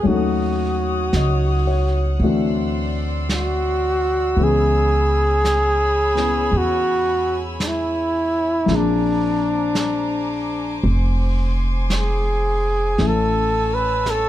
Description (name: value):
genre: jazz ballad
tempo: 56 BPM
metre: 4/4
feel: swing 66% on 8ths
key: unclear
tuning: A4 = 440 Hz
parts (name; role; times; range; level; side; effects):
- warm flugelhorn; melody; 0.0-14.3 s; D4 to B4; -20 LUFS; equal; none
- dark concert grand piano; accompaniment; 0.0-14.3 s; E3 to D#5; -24 LUFS; left 4 dB; none
- warm chamber string section; sustained chords; 0.0-14.3 s; C5 to E6; -30 LUFS; left 1 dB; none
- upright bass; bass; 0.0-14.3 s; F1 to E2; -22 LUFS; equal; none
- vintage brush drum kit; drums; 0.0-14.3 s; brushed snare drum, hi-hat, snare drum; -28 LUFS; right 1 dB; none
room: light reverb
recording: dark, warm production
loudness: -17 LUFS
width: side -13 dB against mid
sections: 0.0-14.3 A section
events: none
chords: 0.1 D#m7b5; 2.2 D9; 4.4 C#m7; 8.7 Bb9; 13.0 Amaj7